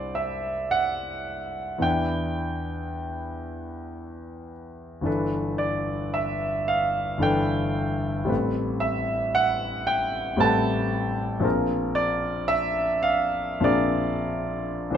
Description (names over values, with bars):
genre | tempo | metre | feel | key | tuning
classical, impressionist solo piano | 44-58 BPM | 3/4 | rubato | unclear | A4 = 440 Hz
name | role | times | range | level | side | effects
clear concert grand piano | solo | 0.0-15.0 s | G1 to A5 | -23 LUFS | equal | none
room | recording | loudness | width
moderate recital hall reverb, RT60 1.5 s | close, detailed microphones | -23 LUFS | side -9 dB against mid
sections
0.0-15.0 A section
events
none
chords
0.0 Cadd9; 1.8 Em7; 5.1 G69; 8.3 Am9; 11.4 Bb9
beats
0.74 | 1.85 2.91 3.98 | 5.07 6.15 7.24 | 8.30 9.36 10.41 | 11.45 12.50 13.65 | 14.95